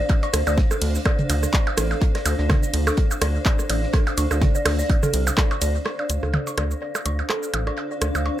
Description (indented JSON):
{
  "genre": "minimal techno",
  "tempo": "125 BPM",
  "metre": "4/4",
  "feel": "swing 56% on 16ths",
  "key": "D minor",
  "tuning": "A4 = 440 Hz",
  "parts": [
    { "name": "granular cloud pad", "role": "texture", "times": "0.0-8.4 s", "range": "D4 to F5", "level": "-30 LUFS", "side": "right 1 dB", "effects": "built-in reverb, sidechain pumping" },
    { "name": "damped 70s drum kit", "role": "drums", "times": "0.1-5.7 s", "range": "hi-hat, snare drum", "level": "-40 LUFS", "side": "right 4 dB", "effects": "none" },
    { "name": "electronic kick drum", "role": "drums", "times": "0.1-5.5 s", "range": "none", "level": "-20 LUFS", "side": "equal", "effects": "none" },
    { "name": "minimal click drum kit", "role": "percussion", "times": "0.1-8.4 s", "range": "percussion blips, rim click, toms", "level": "-26 LUFS", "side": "right 2 dB", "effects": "overdrive, analog delay" },
    { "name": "dark detuned synth bell", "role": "riff", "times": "0.2-8.2 s", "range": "A4 to D5", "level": "-29 LUFS", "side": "equal", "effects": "chorus, phaser, sidechain pumping, low-pass filter, dub echo" },
    { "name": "rubbery square bass", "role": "bass", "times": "0.3-8.3 s", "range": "A1 to D2", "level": "-23 LUFS", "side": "equal", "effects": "sidechain pumping" },
    { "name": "punchy analog drum machine", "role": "drums", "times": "0.3-8.2 s", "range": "handclaps, hi-hat, ride cymbal, shaker", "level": "-29 LUFS", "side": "equal", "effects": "tape echo" }
  ],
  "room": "little or no reverb",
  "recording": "echo-heavy mix",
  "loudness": "-19 LUFS",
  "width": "side -13 dB against mid",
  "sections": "0.0-5.9 A section; 5.9-8.4 B section",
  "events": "drop 0.0-5.9; filter sweep on synth bell 5.9-8.4",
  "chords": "0.0 Dm7",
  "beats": "| 0.10 0.58 1.06 1.54 | 2.02 2.50 2.98 3.46 | 3.94 4.42 4.90 5.38 | 5.86 6.34 6.82 7.30 | 7.78 8.26"
}